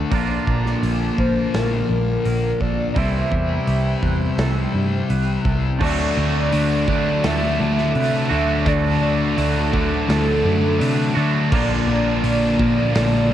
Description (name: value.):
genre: rock, shoegaze and dream pop.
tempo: 84 BPM.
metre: 4/4.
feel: straight.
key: D mixolydian.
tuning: A4 = 439 Hz.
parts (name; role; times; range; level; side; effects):
soft additive organ-like pad; sustained chords; 0.0-13.3 s; Bb3 to E6; -31 LUFS; right 1 dB; ensemble chorus, built-in reverb.
twangy electric guitar; arpeggios; 0.0-13.3 s; F4 to A5; -36 LUFS; right 11 dB; none.
thick fuzz guitar; riff; 0.0-13.3 s; Bb2 to D4; -23 LUFS; left 7 dB; distortion, lush chorus.
twangy electric guitar; riff; 0.0-13.3 s; Bb2 to F#4; -28 LUFS; right 9 dB; reverse reverb.
vintage muted picked electric bass; bass; 0.0-13.3 s; Bb1 to D3; -22 LUFS; right 1 dB; none.
big rock drum kit; drums; 0.1-13.1 s; crash cymbal, hi-hat, kick drum, snare drum; -26 LUFS; right 1 dB; cassette tape.
pure sine lead; melody; 1.2-13.3 s; A4 to E5; -25 LUFS; right 1 dB; chorus, tremolo, analog delay.
cranked stack guitar; riff; 5.8-13.3 s; Bb2 to D4; -24 LUFS; right 1 dB; overdrive.
room: little or no reverb.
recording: home recording on cassette.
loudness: -17 LUFS.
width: side -11 dB against mid.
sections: 0.0-5.8 A section; 5.8-13.3 B section.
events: none.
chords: 0.1 Bb; 3.0 C; 5.8 D; 11.5 Bb.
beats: | 0.12 0.83 1.54 2.25 | 2.96 3.67 4.38 5.10 | 5.81 6.52 7.24 7.95 | 8.66 9.38 10.09 10.81 | 11.52 12.24 12.95.